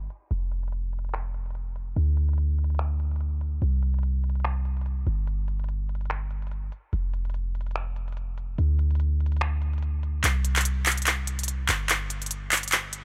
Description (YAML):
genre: future bass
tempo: 145 BPM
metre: 4/4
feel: swing 56% on 16ths, half-time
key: unclear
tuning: A4 = 440 Hz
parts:
  - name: warm 808-style bass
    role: bass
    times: 0.0-13.0 s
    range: F1 to D2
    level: -28 LUFS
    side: equal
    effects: none
  - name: trap drum kit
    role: drums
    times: 0.1-13.0 s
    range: finger snaps, handclaps, hi-hat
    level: -27 LUFS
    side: equal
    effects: low-pass filter on hats, low-pass filter on perc, low-pass filter on snare, low-pass filter on cymbals
room: little or no reverb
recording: none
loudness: -27 LUFS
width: mono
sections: 0.0-10.2 A section; 10.2-13.0 B section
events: build-up 10.2-13.0; drum fill 10.2-13.0; filter sweep 10.2-13.0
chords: none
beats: | 0.31 0.72 1.14 1.55 | 1.96 2.38 2.79 3.21 | 3.62 4.03 4.45 4.86 | 5.27 5.69 6.10 6.51 | 6.93 7.34 7.76 8.17 | 8.58 9.00 9.41 9.83 | 10.24 10.65 11.07 11.48 | 11.89 12.31 12.72